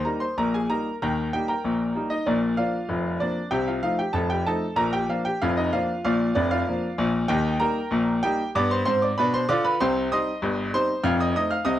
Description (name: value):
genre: ragtime piano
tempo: 96 BPM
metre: 2/4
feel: straight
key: Eb major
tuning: A4 = 439 Hz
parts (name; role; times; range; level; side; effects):
- clear grand piano; solo; 0.0-11.8 s; F1 to F6; -22 LUFS; equal; none
room: moderate studio reverb, RT60 0.5 s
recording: none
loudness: -22 LUFS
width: side -12 dB against mid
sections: 0.0-11.8 A section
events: none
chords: 0.0 Eb; 2.3 Bb; 3.5 F7/C; 4.8 Bb; 7.3 Eb; 8.5 G7; 9.8 Cm; 11.1 F7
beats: 0.37 | 1.00 1.63 | 2.26 2.89 | 3.52 4.15 | 4.78 5.41 | 6.03 6.66 | 7.29 7.92 | 8.54 9.17 | 9.80 10.43 | 11.05 11.68